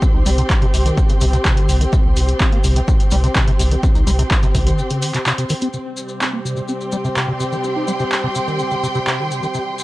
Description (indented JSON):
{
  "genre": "acid house",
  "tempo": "126 BPM",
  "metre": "4/4",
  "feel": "straight",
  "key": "C minor",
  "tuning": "A4 = 438 Hz",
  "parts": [
    { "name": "liquid acid bass", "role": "riff", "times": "0.0-9.6 s", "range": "C3 to Eb4", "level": "-23 LUFS", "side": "equal", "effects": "chorus" },
    { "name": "electronic kick drum", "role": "drums", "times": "0.0-4.6 s", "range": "none", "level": "-16 LUFS", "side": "equal", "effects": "none" },
    { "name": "maracas", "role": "percussion", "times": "0.0-9.8 s", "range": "none", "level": "-32 LUFS", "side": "left 4 dB", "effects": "none" },
    { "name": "warm studio string section", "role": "texture", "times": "0.0-9.8 s", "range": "C4 to C6", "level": "-23 LUFS", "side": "equal", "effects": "sidechain pumping" },
    { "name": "round analog bass", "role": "bass", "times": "0.1-4.7 s", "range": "C2", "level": "-17 LUFS", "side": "equal", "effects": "sidechain pumping" },
    { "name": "punchy analog drum machine", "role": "drums", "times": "0.3-9.2 s", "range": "handclaps, hi-hat", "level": "-22 LUFS", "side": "equal", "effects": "none" },
    { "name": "lush unison pad", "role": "sustained chords", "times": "5.7-9.8 s", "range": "C3 to C5", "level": "-28 LUFS", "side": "equal", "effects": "chorus, vintage 12-bit sampler grit, sidechain pumping" }
  ],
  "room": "little or no reverb",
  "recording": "dry, gritty hardware recording, cassette tape",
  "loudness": "-15 LUFS",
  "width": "side -18 dB against mid",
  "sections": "0.0-5.7 A section; 5.7-9.8 B section",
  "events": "filter sweep on acid bass 0.0-5.7, 5.7-9.8; break 4.8-5.7",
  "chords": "0.0 C5"
}